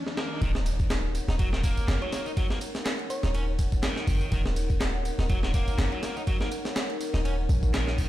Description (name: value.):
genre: breakbeat, breaks.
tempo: 123 BPM.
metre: 4/4.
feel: swing 55% on 16ths.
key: Eb minor pentatonic.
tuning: A4 = 440 Hz.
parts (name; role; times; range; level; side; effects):
dark analog pad; sustained chords; 0.0-8.1 s; Eb3 to Gb5; -36 LUFS; left 1 dB; chorus, sidechain pumping.
riser and impact; sound effects; 0.0-2.4 s; none; -36 LUFS; equal; none.
breakbeat sampler-style drum kit; drums; 0.1-8.1 s; hi-hat, kick drum, ride cymbal, snare drum; -28 LUFS; equal; low-pass filter on cymbals, small room reverb, low-pass filter on snare, low-pass filter on hats, low-pass filter on kick.
biting overdriven guitar; riff; 0.2-8.1 s; Eb3 to Eb4; -36 LUFS; equal; low-pass filter, ping-pong delay.
warm 808-style bass; bass; 0.4-8.1 s; Eb1 to Bb1; -28 LUFS; equal; none.
house drum kit; drums; 0.4-8.1 s; handclaps, ride cymbal, tambourine; -40 LUFS; right 1 dB; small room reverb.
thumb-piano-like synth pluck; melody; 2.0-3.6 s; Db5; -38 LUFS; right 2 dB; chorus, phaser, old record sound, ping-pong delay.
room: digital ambience.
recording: played on a big sound system in a bare room, stone room reverb.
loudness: -25 LUFS.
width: side -14 dB against mid.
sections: 0.4-8.1 A section.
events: riser 0.0-0.4; drop 0.4-8.1; impact 0.4-2.4.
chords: 0.4 Ebm7.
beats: | 0.42 0.91 1.40 1.88 | 2.37 2.86 3.35 3.83 | 4.32 4.81 5.30 5.79 | 6.27 6.76 7.25 7.74.